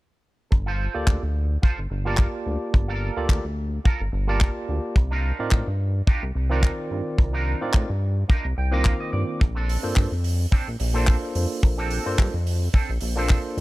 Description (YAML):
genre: nu-disco, nu disco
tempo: 108 BPM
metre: 4/4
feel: swing 55% on 16ths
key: G minor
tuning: A4 = 440 Hz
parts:
  - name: electric guitar with an envelope filter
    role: riff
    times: 0.5-13.6 s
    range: C4 to G5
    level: -33 LUFS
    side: right 4 dB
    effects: analog chorus, tape echo
  - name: chorused synth bass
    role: bass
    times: 0.5-13.6 s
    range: G1 to A2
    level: -25 LUFS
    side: equal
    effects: sidechain pumping
  - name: kick drum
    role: drums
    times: 0.5-13.4 s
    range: none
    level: -19 LUFS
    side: equal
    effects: none
  - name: barky tine electric piano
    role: accompaniment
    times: 0.9-13.6 s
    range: Eb3 to D6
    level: -30 LUFS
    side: right 1 dB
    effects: medium stereo tremolo, vintage 12-bit sampler grit, tape echo
  - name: damped 70s drum kit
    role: drums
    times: 1.1-13.6 s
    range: handclaps, hi-hat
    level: -32 LUFS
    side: right 1 dB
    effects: none
room: studio ambience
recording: none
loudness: -21 LUFS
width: side -19 dB against mid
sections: 0.5-13.6 A section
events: clean electric guitar fill 8.3-9.4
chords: 0.5 Gm9; 5.0 Cm11; 9.4 Bbmaj9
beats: | 0.52 1.08 1.63 2.19 | 2.74 3.30 3.85 4.41 | 4.97 5.52 6.08 6.63 | 7.19 7.74 8.30 8.86 | 9.41 9.97 10.52 11.08 | 11.63 12.19 12.74 13.30